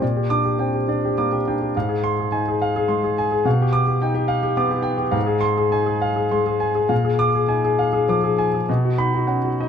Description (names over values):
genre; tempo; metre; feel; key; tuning
classical, romantic character piece for solo piano; 104 BPM; 3/4; rubato; unclear; A4 = 445 Hz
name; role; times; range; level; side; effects
clear grand piano; solo; 0.0-9.7 s; Ab2 to D6; -18 LUFS; left 1 dB; none
room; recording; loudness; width
light reverb; minimal, uncompressed stereo recording; -18 LUFS; side -7 dB against mid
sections
0.0-9.7 A section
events
none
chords
0.0 Gm/Bb; 1.7 Fm/Ab; 3.5 G7/B; 5.2 Fm/Ab; 6.9 Bb7; 8.7 B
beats
| 0.02 0.59 1.17 | 1.74 2.31 2.89 | 3.45 4.00 4.57 | 5.15 5.74 6.32 | 6.90 7.49 8.09 | 8.68 9.28